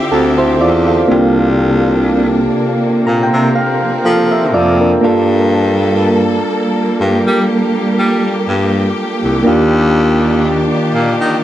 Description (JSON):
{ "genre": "R&B", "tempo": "61 BPM", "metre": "4/4", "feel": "swing 54% on 16ths", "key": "unclear", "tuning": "A4 = 440 Hz", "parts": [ { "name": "soft electric-piano-like synth keys", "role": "accompaniment", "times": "0.0-11.4 s", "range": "Bb3 to Bb5", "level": "-14 LUFS", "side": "equal", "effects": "chorus" }, { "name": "bright symphonic string section", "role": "sustained chords", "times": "0.0-11.4 s", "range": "C3 to E5", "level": "-17 LUFS", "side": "equal", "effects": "none" }, { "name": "warm baritone saxophone", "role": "bass", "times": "0.1-11.4 s", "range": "C2 to G3", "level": "-15 LUFS", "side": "equal", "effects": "none" } ], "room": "light reverb, studio reverb", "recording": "dark, warm production", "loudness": "-10 LUFS", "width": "side -12 dB against mid", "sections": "0.0-11.4 A section", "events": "synth keys fill 2.6-5.5", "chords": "0.0 Dm11; 1.1 C9sus4; 5.0 Gm9; 9.5 Ebmaj9" }